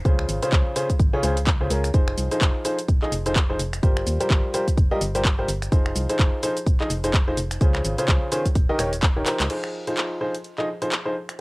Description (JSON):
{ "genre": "piano house", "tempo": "127 BPM", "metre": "4/4", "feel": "swing 58% on 16ths", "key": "F minor", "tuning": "A4 = 440 Hz", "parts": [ { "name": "clear upright piano", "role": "riff", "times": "0.1-11.1 s", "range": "Db3 to Eb5", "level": "-25 LUFS", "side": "equal", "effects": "sidechain pumping, tape echo" }, { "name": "organ-like FM bass", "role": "bass", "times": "0.1-9.5 s", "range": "Eb1 to Eb2", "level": "-27 LUFS", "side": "equal", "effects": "sidechain pumping" }, { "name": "electronic kick drum", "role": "drums", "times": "0.1-9.1 s", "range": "none", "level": "-20 LUFS", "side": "equal", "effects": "cassette tape" }, { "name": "house drum kit", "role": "drums", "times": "0.1-11.4 s", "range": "crash cymbal, finger snaps, handclaps, hi-hat, shaker", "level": "-27 LUFS", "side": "equal", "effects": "cassette tape" } ], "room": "little or no reverb", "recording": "home recording on cassette", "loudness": "-20 LUFS", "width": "side -26 dB against mid", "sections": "0.0-9.5 A section; 9.5-11.4 B section", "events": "drum fill 9.3", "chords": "0.1 Dbmaj7; 1.9 Fm7; 3.8 C7sus4/G; 5.7 Fm7; 7.6 Dbmaj7; 8.6 Eb7; 9.5 Fm7" }